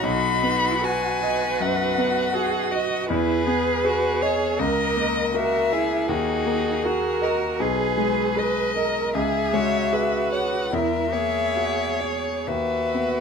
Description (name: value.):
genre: classical, slow romantic movement for piano quartet.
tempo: 64-81 BPM.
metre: 4/4.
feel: rubato.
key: B major.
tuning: A4 = 443 Hz.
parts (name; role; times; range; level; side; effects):
warm violin; melody; 0.0-13.2 s; G#4 to B5; -26 LUFS; left 4 dB; none.
rich cello; second line; 0.0-13.2 s; D#4 to B4; -27 LUFS; right 7 dB; none.
warm violin; second line; 0.0-13.2 s; F#4 to C#5; -28 LUFS; equal; none.
bright concert grand piano; accompaniment; 0.0-13.2 s; B1 to E5; -25 LUFS; left 1 dB; none.
room: light reverb.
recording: close, detailed microphones.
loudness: -20 LUFS.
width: side -6 dB against mid.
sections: 0.0-13.2 A section.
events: none.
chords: 0.0 B; 3.1 Emaj7; 4.6 A#dim/C#; 6.1 D#m; 7.6 G#m/B; 9.2 C#m; 10.7 F#7/E; 12.5 B/D#.